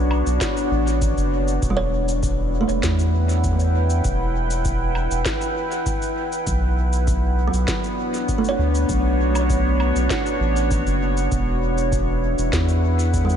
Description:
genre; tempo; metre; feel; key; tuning
ambient dub; 99 BPM; 4/4; straight; E dorian; A4 = 440 Hz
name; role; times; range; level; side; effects
deep dark ambient pad; sustained chords; 0.0-13.4 s; B3 to G5; -23 LUFS; equal; chorus, built-in reverb
soft dub sub bass; bass; 0.0-13.4 s; E1 to E2; -20 LUFS; equal; none
electronic woodblock, shaker and snare drum; drums; 0.1-13.4 s; none; -30 LUFS; equal; dub echo
electronic kick drum; drums; 0.4-13.3 s; none; -27 LUFS; equal; none
kalimba; arpeggios; 1.7-13.4 s; F#3 to C#5; -28 LUFS; right 5 dB; vintage 12-bit sampler grit, tape echo
room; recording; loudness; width
light reverb, digital ambience; nothing above 10.6 kHz; -18 LUFS; side -8 dB against mid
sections
0.0-13.4 A section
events
none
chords
0.0 Bmadd9; 1.6 Em7; 6.5 Bmadd9; 11.3 Em7

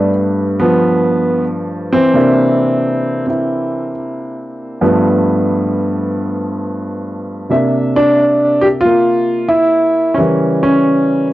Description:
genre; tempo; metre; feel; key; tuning
solo jazz; 90 BPM; 4/4; swing 69% on 8ths; unclear; A4 = 440 Hz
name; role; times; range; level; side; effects
warm concert grand piano; solo; 0.0-11.3 s; G2 to E5; -12 LUFS; equal; cassette tape
room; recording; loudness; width
light reverb; home recording on cassette; -12 LUFS; side -15 dB against mid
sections
0.0-11.3 A section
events
none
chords
0.0 G9; 2.1 C9; 4.8 G9; 7.5 C9; 10.2 C#dim7

